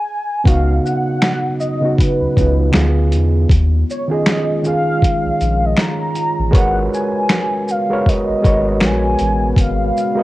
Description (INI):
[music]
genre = lo-fi hip hop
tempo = 79 BPM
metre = 4/4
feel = swing 58% on 16ths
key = G# dorian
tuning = A4 = 440 Hz
[part]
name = warm velvety synth lead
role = melody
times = 0.0-10.2 s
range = B4 to A#5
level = -20 LUFS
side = equal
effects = chorus, low-pass filter, cassette tape
[part]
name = overdriven reed electric piano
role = accompaniment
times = 0.4-10.2 s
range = C#3 to D#5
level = -19 LUFS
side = right 2 dB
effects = cassette tape, low-pass filter
[part]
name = deep dark ambient pad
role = sustained chords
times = 1.5-10.2 s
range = C#3 to F#4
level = -26 LUFS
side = left 2 dB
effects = chorus, built-in reverb, low-pass filter, cassette tape
[part]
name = soft dub sub bass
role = bass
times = 0.5-9.9 s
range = G#1 to E2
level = -16 LUFS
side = equal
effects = none
[part]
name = dusty soul sampler-style drum kit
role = drums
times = 0.5-10.2 s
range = finger snaps, hi-hat, kick drum, shaker, snare drum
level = -16 LUFS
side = equal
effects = overdrive, cassette tape
[part]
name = finger snaps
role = percussion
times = 1.2-9.0 s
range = none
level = -27 LUFS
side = left 3 dB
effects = none
[sound]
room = digital ambience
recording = home recording on cassette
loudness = -13 LUFS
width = side -17 dB against mid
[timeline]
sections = 0.5-10.2 A section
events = stop 0.0-0.5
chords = 0.5 C#9sus4; 2.7 Ddim7; 3.5 D#9sus4; 6.5 G#m11